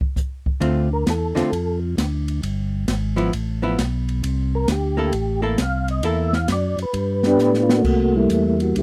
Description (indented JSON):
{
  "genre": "soul jazz organ trio",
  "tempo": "133 BPM",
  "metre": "4/4",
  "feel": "swing 66% on 8ths",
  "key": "unclear",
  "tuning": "A4 = 440 Hz",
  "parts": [
    { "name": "open jazz drum kit", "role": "drums", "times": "0.0-8.8 s", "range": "crash cymbal, hi-hat, kick drum, ride cymbal, snare drum", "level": "-26 LUFS", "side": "equal", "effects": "none" },
    { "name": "archtop guitar, miked and amplified", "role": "accompaniment", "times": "0.6-6.3 s", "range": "D3 to A4", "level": "-24 LUFS", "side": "equal", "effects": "none" },
    { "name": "tonewheel organ", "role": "bass", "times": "0.6-8.8 s", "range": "G1 to A2", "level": "-25 LUFS", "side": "equal", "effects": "none" },
    { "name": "percussive tonewheel organ", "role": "melody", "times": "0.9-1.8, 4.6-8.8 s", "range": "G3 to F5", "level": "-22 LUFS", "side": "equal", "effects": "slow rotary speaker, chorus vibrato" }
  ],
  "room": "little or no reverb",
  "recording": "dry, close 1970s-style studio recording",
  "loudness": "-21 LUFS",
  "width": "mono",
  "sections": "0.0-7.8 A section",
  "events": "tonewheel organ solo 0.0-7.8; drum fill 7.4-7.8",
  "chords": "0.0 N.C.; 0.6 Dm7; 2.4 G13; 4.2 C13; 6.9 Gadd9; 7.8 C13",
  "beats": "0.16 | 0.61 1.06 1.52 1.97 | 2.42 2.87 3.32 3.78 | 4.23 4.68 5.13 5.58 | 6.04 6.49 6.94 7.39 | 7.84 8.30 8.75"
}